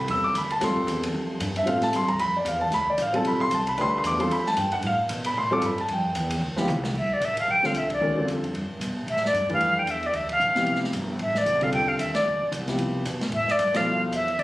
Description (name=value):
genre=modal jazz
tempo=226 BPM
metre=4/4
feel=swing 59% on 8ths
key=D dorian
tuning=A4 = 440 Hz
part: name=dark baby grand piano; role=accompaniment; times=0.0-14.1 s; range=B2 to E6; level=-24 LUFS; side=equal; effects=none
part: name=upright bass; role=bass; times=0.0-14.4 s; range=F1 to C3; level=-31 LUFS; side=equal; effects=none
part: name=vintage drum kit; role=drums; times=0.1-14.4 s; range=crash cymbal, hi-hat, kick drum, ride cymbal, snare drum, toms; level=-33 LUFS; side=equal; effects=none
part: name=breathy silver concert flute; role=melody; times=7.0-14.4 s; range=D5 to G5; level=-23 LUFS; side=equal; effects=none
room=light reverb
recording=recorded on a phone in the room, club reverb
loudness=-22 LUFS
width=side -17 dB against mid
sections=0.0-7.0 A section; 7.0-14.4 B section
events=drum fill 6.4-7.0; band accent 7.9, 10.3, 12.1, 13.7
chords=0.0 Dm11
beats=0.09 0.35 | 0.62 0.88 1.14 1.41 | 1.67 1.93 2.20 2.46 | 2.73 2.99 3.25 3.52 | 3.78 4.04 4.31 4.57 | 4.84 5.10 5.36 5.63 | 5.89 6.16 6.42 6.68 | 6.95 7.21 7.48 7.75 | 8.01 8.28 8.54 8.81 | 9.07 9.34 9.60 9.87 | 10.13 10.40 10.66 10.93 | 11.20 11.46 11.73 11.99 | 12.26 12.52 12.79 13.06 | 13.32 13.59 13.85 14.12 | 14.38